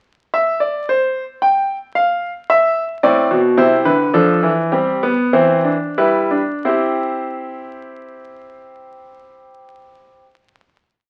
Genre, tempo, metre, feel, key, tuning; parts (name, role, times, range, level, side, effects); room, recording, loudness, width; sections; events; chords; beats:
classical, baroque-style 3-part fugue for grand piano; 86-112 BPM; 3/4; straight; C major; A4 = 439 Hz
clear concert grand piano; solo; 0.3-10.2 s; A2 to G5; -17 LUFS; equal
moderate stone room reverb, RT60 1.1 s; very old 78 rpm record, vinyl crackle; -16 LUFS; mono
0.0-6.7 exposition; 6.7-10.8 final chord
slowing down 2.2-6.7
0.0 N.C.; 3.0 Am; 4.1 Dm/F; 4.7 C/G; 6.0 G; 6.7 C
0.34 0.88 | 1.42 1.96 2.50 | 3.04 3.58 4.15 | 4.73 5.34 5.98 | 6.65 7.34 8.04 | 8.74 9.43 10.13